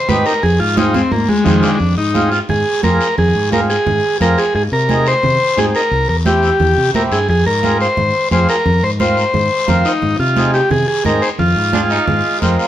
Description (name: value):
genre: latin, cumbia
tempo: 175 BPM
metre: 4/4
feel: straight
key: F minor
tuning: A4 = 439 Hz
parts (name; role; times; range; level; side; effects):
- overdriven combo organ; melody; 0.0-12.4 s; Eb3 to C5; -15 LUFS; left 1 dB; none
- mellow accordion; accompaniment; 0.1-12.7 s; C4 to Bb4; -20 LUFS; right 2 dB; none
- fingered electric bass; bass; 0.1-12.6 s; C2 to C3; -17 LUFS; left 1 dB; none
- congas; percussion; 0.1-12.6 s; none; -22 LUFS; right 4 dB; none
- guiro; percussion; 0.1-12.7 s; none; -27 LUFS; left 5 dB; none
- growling trumpet; second line; 11.7-12.7 s; Ab3 to Eb4; -22 LUFS; right 4 dB; none
room: moderate stone room reverb, RT60 1.0 s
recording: band playing live in one room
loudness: -12 LUFS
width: side -11 dB against mid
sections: 0.0-1.8 A section; 1.8-12.7 B section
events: transistor combo organ solo 0.0-1.8; drum fill 0.9-1.8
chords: 0.4 Fm; 4.5 Ab; 5.9 C7; 7.3 Fm; 10.0 Ab; 11.4 Fm